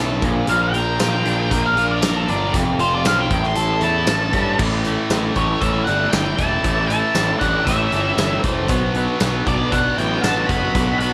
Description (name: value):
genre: classic rock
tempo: 117 BPM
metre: 4/4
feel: straight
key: unclear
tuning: A4 = 439 Hz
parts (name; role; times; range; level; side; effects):
- tonewheel organ; sustained chords; 0.0-11.1 s; C4 to F#5; -33 LUFS; equal; none
- biting overdriven guitar; riff; 0.0-11.1 s; F2 to Bb4; -24 LUFS; equal; none
- fuzz picked electric bass; bass; 0.0-11.1 s; E1 to G2; -25 LUFS; equal; overdrive
- huge arena drum kit; drums; 0.2-11.1 s; crash cymbal, hi-hat, kick drum, snare drum, tambourine; -26 LUFS; equal; none
- octave-fuzz lead guitar; melody; 0.5-11.1 s; A4 to C6; -24 LUFS; equal; distortion, slapback echo
- octave-fuzz lead guitar; second line; 5.4-11.1 s; A3 to F#4; -30 LUFS; equal; distortion
- clean lap steel guitar; second line; 8.5-9.3 s; B4 to C5; -30 LUFS; equal; none
room: studio reverb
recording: none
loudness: -19 LUFS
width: mono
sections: 0.0-4.6 A section; 4.6-11.1 B section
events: lead electric guitar solo 0.0-4.6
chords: 0.2 Bb; 2.5 F; 3.3 A; 8.7 Bm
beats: | 0.49 1.00 1.51 2.03 | 2.54 3.06 3.57 4.08 | 4.60 5.11 5.63 6.14 | 6.65 7.17 7.68 8.19 | 8.71 9.22 9.73 10.25 | 10.76